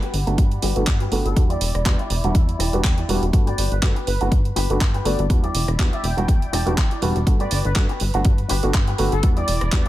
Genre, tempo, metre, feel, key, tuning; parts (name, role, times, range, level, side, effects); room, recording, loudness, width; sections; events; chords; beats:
filtered disco house; 122 BPM; 4/4; swing 55% on 16ths; G major; A4 = 439 Hz
muted studio violin section; sustained chords; 0.0-9.9 s; G3 to B5; -37 LUFS; equal; sidechain pumping, low-pass filter
electric guitar with an envelope filter; riff; 0.0-9.9 s; E4 to A5; -29 LUFS; left 2 dB; sidechain pumping, low-pass filter
house drum kit; drums; 0.0-9.9 s; handclaps, hi-hat, rim click; -28 LUFS; right 2 dB; sidechain pumping on hats
tambourine; percussion; 0.0-9.8 s; barely audible
plucky analog bass; bass; 0.1-9.8 s; E1 to G2; -23 LUFS; equal; sidechain pumping, low-pass filter
dark concert grand piano; accompaniment; 0.3-9.8 s; G3 to F#4; -26 LUFS; right 2 dB; phaser, sidechain pumping, low-pass filter
electronic kick drum; drums; 0.4-9.8 s; -18 LUFS; equal
analog synth brass; melody; 1.3-9.9 s; A4 to G5; -30 LUFS; left 1 dB; chorus, vintage 12-bit sampler grit, sidechain pumping, low-pass filter
little or no reverb; -17 LUFS; side -15 dB against mid
0.0-9.9 A section
filter sweep 0.0-9.9; clean electric guitar fill 1.9-3.3, 6.3-7.3
0.0 Gmaj7; 1.4 Em7; 3.3 Gmaj7; 5.3 Em7; 7.3 Gmaj7; 9.2 Em7
0.38 0.88 | 1.37 1.86 2.35 2.84 | 3.33 3.83 4.32 4.81 | 5.30 5.79 6.29 6.78 | 7.27 7.76 8.25 8.74 | 9.24 9.73